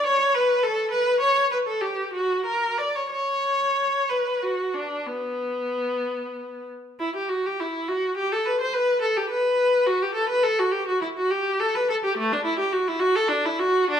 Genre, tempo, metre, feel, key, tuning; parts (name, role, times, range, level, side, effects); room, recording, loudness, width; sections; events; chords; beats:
classical, baroque-style suite movement for unaccompanied viola; 60-73 BPM (dotted quarters); 12/8; rubato; B minor; A4 = 440 Hz
clear viola; solo; 0.0-14.0 s; A3 to D5; -21 LUFS; equal
moderate recital hall reverb, RT60 1.7 s; -21 LUFS; side -8 dB against mid
0.0-7.0 A section; 7.0-14.0 A section
0.35 1.21 2.13 | 3.10 4.09 5.06 6.04 | 7.00 7.88 8.73 9.59 | 10.44 11.31 12.17 13.00 | 13.90